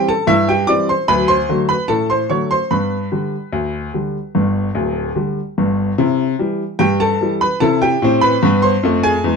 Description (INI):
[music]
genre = ragtime piano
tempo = 74 BPM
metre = 2/4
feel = straight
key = C major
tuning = A4 = 444 Hz
[part]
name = clear upright piano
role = solo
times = 0.0-9.4 s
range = D1 to D6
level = -14 LUFS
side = equal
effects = none
[sound]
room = light reverb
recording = dark, warm production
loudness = -14 LUFS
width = side -5 dB against mid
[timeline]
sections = 0.0-6.0 A section; 6.0-9.4 B section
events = none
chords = 0.0 C; 1.1 D7; 2.7 G; 6.0 C